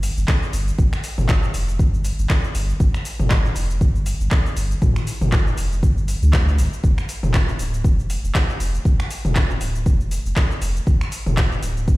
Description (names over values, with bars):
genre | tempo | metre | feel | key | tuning
afro house | 119 BPM | 4/4 | swing 57% on 16ths | unclear | A4 = 438 Hz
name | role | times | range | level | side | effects
warm sub bass | bass | 0.0-12.0 s | D1 to D2 | -21 LUFS | equal | sidechain pumping
deep house drum kit | drums | 0.0-12.0 s | finger snaps, handclaps, hi-hat, shaker, toms | -25 LUFS | equal | overdrive
electronic kick drum | drums | 0.3-12.0 s | none | -18 LUFS | equal | none
room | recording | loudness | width
little or no reverb | played on a big sound system in a bare room, stone room reverb | -17 LUFS | side -19 dB against mid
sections
0.0-12.0 A section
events
none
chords
none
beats
0.28 | 0.79 1.29 1.79 2.30 | 2.80 3.31 3.81 4.32 | 4.82 5.32 5.83 6.33 | 6.84 7.34 7.84 8.35 | 8.85 9.36 9.86 10.37 | 10.87 11.37 11.88